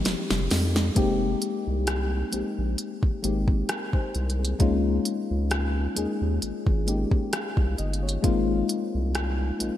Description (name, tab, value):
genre	contemporary R&B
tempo	66 BPM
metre	4/4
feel	swing 54% on 16ths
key	F minor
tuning	A4 = 439 Hz
part	mellow FM electric piano	accompaniment	0.0-9.8 s	F3 to F5	-28 LUFS	left 3 dB	chorus
part	saturated sub bass	bass	0.0-9.7 s	F1 to F2	-27 LUFS	equal	none
part	smooth R&B drum kit	drums	0.1-9.8 s	hi-hat, kick drum, rim click, snare drum	-26 LUFS	equal	gated reverb
room	light reverb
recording	bright 1980s-style digital production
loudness	-23 LUFS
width	side -12 dB against mid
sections	1.0-9.8 A section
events	drum fill 0.0-1.0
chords	0.0 Fm7; 4.6 Db69; 8.2 Ab6